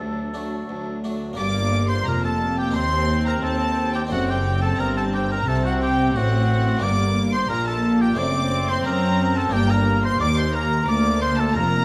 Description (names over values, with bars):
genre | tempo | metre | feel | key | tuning
classical, baroque-style concerto movement with solo episodes | 89 BPM | 4/4 | straight | G minor | A4 = 439 Hz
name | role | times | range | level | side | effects
rich symphonic violin section | melody | 0.0-11.8 s | D4 to D6 | -33 LUFS | equal | none
warm oboe | melody | 0.0-11.8 s | F#4 to D5 | -29 LUFS | equal | none
clear chamber violin section | second line | 0.0-11.8 s | D4 to D6 | -32 LUFS | equal | none
harpsichord | accompaniment | 0.0-11.8 s | D2 to C5 | -34 LUFS | equal | none
rich chamber viola section | accompaniment | 0.0-11.8 s | F#3 to C4 | -29 LUFS | equal | none
rich chamber cello section | bass | 0.0-11.8 s | D2 to F#3 | -28 LUFS | equal | none
rich chamber double bass section | bass | 1.4-11.8 s | F1 to F#2 | -27 LUFS | equal | none
room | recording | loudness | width
moderate recital hall reverb, RT60 1.8 s | none | -21 LUFS | mono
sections
0.0-1.4 A section; 1.4-11.8 B section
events
none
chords
0.0 D; 1.4 Gm; 2.8 Cm/Eb; 4.1 D7/F#; 6.8 Gm; 8.2 D7/F#; 9.5 Gm